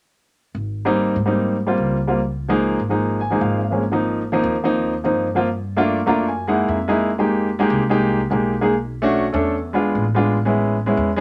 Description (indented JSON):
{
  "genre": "Afro-Cuban jazz",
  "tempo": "147 BPM",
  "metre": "4/4",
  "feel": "straight",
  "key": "Ab major",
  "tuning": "A4 = 439 Hz",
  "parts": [
    { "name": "upright bass", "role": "bass", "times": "0.5-11.2 s", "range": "Ab1 to Ab2", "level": "-28 LUFS", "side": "equal", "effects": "none" },
    { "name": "warm baby grand piano", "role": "accompaniment", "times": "0.9-11.2 s", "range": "F3 to Bb5", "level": "-20 LUFS", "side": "equal", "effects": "none" }
  ],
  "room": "moderate club reverb, RT60 0.6 s",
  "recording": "none",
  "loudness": "-20 LUFS",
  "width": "mono",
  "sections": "0.5-3.8 A section; 3.8-11.2 B section",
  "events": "grand piano fill 3.0-3.8, 5.9-7.1",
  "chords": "0.5 Abmaj9; 2.2 Db6; 3.8 Ab69; 5.5 Gm9; 6.3 Gb13; 7.1 Fm11; 8.7 Bm9; 9.5 E7b9; 10.4 Amaj9"
}